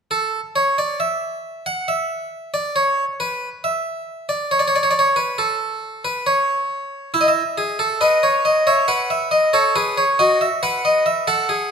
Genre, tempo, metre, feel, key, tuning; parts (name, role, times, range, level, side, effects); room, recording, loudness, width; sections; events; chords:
classical, baroque-style 3-part fugue for harpsichord; 69 BPM; 4/4; straight; A4 = 440 Hz
harpsichord; solo; 0.1-11.7 s; E4 to F#5; -17 LUFS; equal
wet recital hall reverb, RT60 1.5 s; -17 LUFS; side -6 dB against mid
0.1-11.7 A section
0.1 N.C.; 7.1 E; 8.9 B; 10.6 B7